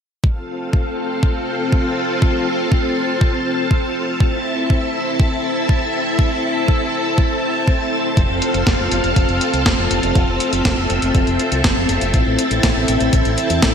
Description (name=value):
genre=italo disco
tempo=121 BPM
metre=4/4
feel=straight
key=unclear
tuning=A4 = 440 Hz
part: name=string machine, full ensemble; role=sustained chords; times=0.2-13.7 s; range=C4 to A5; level=-18 LUFS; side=left 1 dB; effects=ensemble chorus, vintage 12-bit sampler grit
part: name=electronic kick drum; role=drums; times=0.2-13.7 s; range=none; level=-16 LUFS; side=equal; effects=none
part: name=fingered electric bass with an envelope filter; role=bass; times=8.2-13.7 s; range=F1 to E2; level=-21 LUFS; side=equal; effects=none
part: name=clean 12-bit digital drum machine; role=drums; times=8.2-13.7 s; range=hi-hat, snare drum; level=-21 LUFS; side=equal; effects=low-pass filter on hats, low-pass filter on snare, low-pass filter on room, gated reverb
room=moderate lush hall reverb, RT60 1.9 s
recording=bright 1980s-style digital production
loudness=-15 LUFS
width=side -7 dB against mid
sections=0.2-13.7 A section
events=none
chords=0.2 F; 4.2 Am; 8.2 F; 12.1 Am